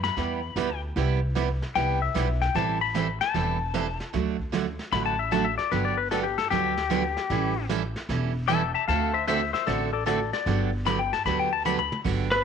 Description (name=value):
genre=country, western swing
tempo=152 BPM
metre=4/4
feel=swing 66% on 8ths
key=G major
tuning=A4 = 440 Hz
part: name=clean lap steel guitar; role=second line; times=0.0-12.0 s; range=G4 to B5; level=-26 LUFS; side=left 9 dB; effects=none
part: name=upright bass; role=bass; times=0.0-12.4 s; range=E1 to F#2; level=-30 LUFS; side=equal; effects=none
part: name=vintage brush drum kit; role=drums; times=0.0-12.4 s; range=brushed snare drum, crash cymbal, hi-hat, kick drum, snare drum, toms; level=-37 LUFS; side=equal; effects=none
part: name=picked steel-string acoustic guitar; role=accompaniment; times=0.2-12.3 s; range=C3 to A4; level=-29 LUFS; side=right 10 dB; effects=none
part: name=pedal steel guitar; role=melody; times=12.3-12.4 s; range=B4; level=-21 LUFS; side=equal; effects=none
room=moderate spring reverb, RT60 1.3 s, studio ambience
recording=1960s-style stereo with parts hard left and right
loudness=-24 LUFS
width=side -7 dB against mid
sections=0.0-12.1 A section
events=electric slide guitar solo 0.0-12.1; drum fill 11.7-12.1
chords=0.0 G6; 1.0 Cmaj7; 2.5 Am7; 4.1 D; 5.7 Gmaj7; 7.3 A7; 8.9 D7; 10.5 Gmaj7